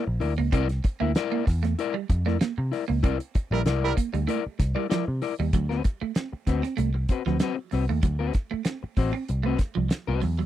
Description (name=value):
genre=funk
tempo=96 BPM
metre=4/4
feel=straight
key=D mixolydian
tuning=A4 = 443 Hz
part: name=electric guitar at the edge of break-up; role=accompaniment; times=0.0-10.4 s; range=C4 to E5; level=-28 LUFS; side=left 9 dB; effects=none
part: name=vintage muted picked electric bass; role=bass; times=0.1-10.5 s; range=A1 to C3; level=-26 LUFS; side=equal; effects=none
part: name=clean electric guitar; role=riff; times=0.2-10.5 s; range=F3 to C4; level=-31 LUFS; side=right 9 dB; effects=spring reverb
part: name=damped 70s drum kit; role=drums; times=0.2-10.4 s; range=hi-hat, kick drum, snare drum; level=-25 LUFS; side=equal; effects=none
part: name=clear horn section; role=second line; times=3.5-3.9 s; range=G3 to Bb4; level=-27 LUFS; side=right 8 dB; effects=none
room=little or no reverb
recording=dry, close 1970s-style studio recording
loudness=-24 LUFS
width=side -12 dB against mid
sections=0.0-5.5 A section; 5.5-10.5 B section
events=band accent 3.0-5.5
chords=0.0 C9; 5.5 D13